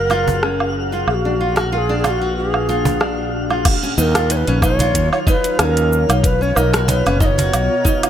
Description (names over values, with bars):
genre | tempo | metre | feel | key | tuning
organic downtempo | 93 BPM | 4/4 | swing 54% on 16ths | Eb minor | A4 = 444 Hz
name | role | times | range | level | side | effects
breathy mellow Native American-style cedar flute | melody | 0.0-8.1 s | Gb4 to D#5 | -21 LUFS | equal | digital delay
warbly tape-like pad | sustained chords | 0.0-8.1 s | Bb2 to A#5 | -25 LUFS | left 2 dB | chorus, built-in reverb, sidechain pumping
nylon-string guitar | arpeggios | 0.0-8.1 s | Db4 to Gb4 | -23 LUFS | right 2 dB | tape echo
fretless electric bass | bass | 0.0-7.7 s | Gb1 to Eb2 | -20 LUFS | equal | sidechain pumping
twinkling granular texture | texture | 0.0-8.1 s | F4 to F5 | -28 LUFS | equal | built-in reverb
afro-pop drum kit | drums | 0.1-8.1 s | cabasa, crash cymbal, hi-hat, rim click, woodblock | -21 LUFS | right 2 dB | studio reverb
cajon | percussion | 0.1-8.0 s | none | -23 LUFS | right 2 dB | none
electronic kick drum | drums | 3.7-8.0 s | none | -18 LUFS | equal | studio reverb
room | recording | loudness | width
light reverb | none | -14 LUFS | side -10 dB against mid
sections
0.0-3.7 A section; 3.7-8.1 B section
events
none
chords
0.0 Gbmaj9; 1.1 Bb7b9b13; 3.7 Ebm9; 6.2 Bmaj9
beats
0.43 | 1.08 1.72 2.37 3.01 | 3.66 4.30 4.95 5.59 | 6.24 6.88 7.53